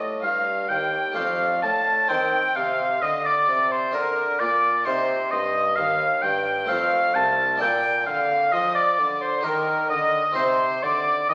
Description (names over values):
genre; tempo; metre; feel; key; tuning
classical, baroque-style sonata movement with continuo; 65 BPM; 3/4; straight; unclear; A4 = 440 Hz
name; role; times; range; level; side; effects
dark violin; melody; 0.0-11.3 s; Bb4 to A5; -29 LUFS; equal; none
clear oboe; second line; 0.0-11.3 s; Bb4 to A5; -24 LUFS; equal; none
harpsichord; accompaniment; 0.0-11.3 s; C2 to C5; -34 LUFS; equal; none
warm bassoon; bass; 0.0-11.3 s; C2 to F3; -32 LUFS; equal; none
room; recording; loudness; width
wet recital hall reverb, RT60 1.6 s; very old 78 rpm record, vinyl crackle; -22 LUFS; mono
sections
0.0-11.3 A section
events
none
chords
0.0 Eb/G; 1.2 Dm/F; 2.1 Cm; 3.9 Bb/D; 4.9 Cm7; 6.7 F; 7.6 Bbmaj7; 9.4 Eb; 10.4 Cm